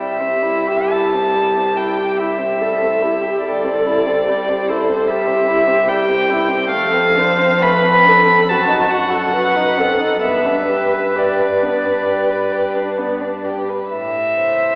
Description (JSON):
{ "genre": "classical, slow romantic movement for string quartet", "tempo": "61-76 BPM", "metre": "4/4", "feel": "rubato", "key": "C major", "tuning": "A4 = 440 Hz", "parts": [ { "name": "dark violin", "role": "melody", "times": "0.0-14.8 s", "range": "C5 to B5", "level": "-19 LUFS", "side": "equal", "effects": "none" }, { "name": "dark violin", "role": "second line", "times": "0.0-14.8 s", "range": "G3 to C5", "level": "-24 LUFS", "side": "equal", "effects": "none" }, { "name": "dark viola", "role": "accompaniment", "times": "0.0-13.5 s", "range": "F#4 to C5", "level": "-21 LUFS", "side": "equal", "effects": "none" }, { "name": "rich cello", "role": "bass", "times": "0.0-14.7 s", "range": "C2 to A2", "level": "-29 LUFS", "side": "equal", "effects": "none" } ], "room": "wet concert hall reverb, RT60 2.3 s", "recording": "heard from further back in the room, AM radio sound", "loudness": "-16 LUFS", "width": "mono", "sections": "0.0-14.8 A section", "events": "none", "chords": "0.0 C; 6.7 Dm7/F; 8.5 F#dim7; 10.2 G; 13.9 Am" }